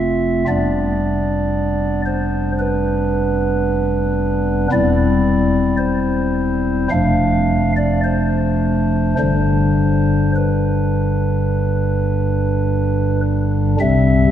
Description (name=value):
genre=classical, chorale-style piece for pipe organ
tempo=51-58 BPM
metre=4/4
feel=rubato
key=unclear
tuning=A4 = 440 Hz
part: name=pipe organ, stopped flute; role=solo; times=0.0-14.3 s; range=E1 to F5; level=-15 LUFS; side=equal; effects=none
room=wet church reverb, RT60 2.6 s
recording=none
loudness=-15 LUFS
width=side -10 dB against mid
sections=0.0-13.8 A section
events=none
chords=0.5 G7/F; 4.7 C/E; 6.9 Dm/F; 9.2 G; 13.8 C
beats=| 0.49 1.53 2.60 3.66 | 4.72 5.79 6.92 8.04 | 9.19 10.35 11.52 12.66 | 13.80